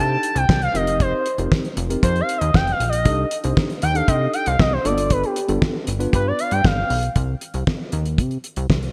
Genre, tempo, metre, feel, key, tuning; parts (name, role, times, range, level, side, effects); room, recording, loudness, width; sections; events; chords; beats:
early-eighties boogie funk; 117 BPM; 4/4; straight; C dorian; A4 = 441 Hz
expressive portamento lead; melody; 0.0-7.2 s; G4 to A5; -25 LUFS; equal; chorus
mellow tine electric piano; accompaniment; 0.0-6.5 s; Bb3 to C5; -29 LUFS; equal
plucky analog bass; bass; 0.0-8.9 s; F1 to C3; -25 LUFS; equal
damped 70s drum kit; drums; 0.2-8.9 s; hi-hat, kick drum, snare drum; -23 LUFS; equal; gated reverb
light reverb, small room ambience; bright 1980s-style digital production; -20 LUFS; mono
0.0-7.2 A section; 7.2-8.9 B section
analog synth lead solo 0.0-7.2
0.0 Cm69; 0.7 F7sus4; 3.1 Cm69; 4.8 G9; 7.2 Cm
0.49 | 1.00 1.52 2.03 2.54 | 3.05 3.57 4.08 4.59 | 5.11 5.62 6.13 6.64 | 7.16 7.67 8.18 8.70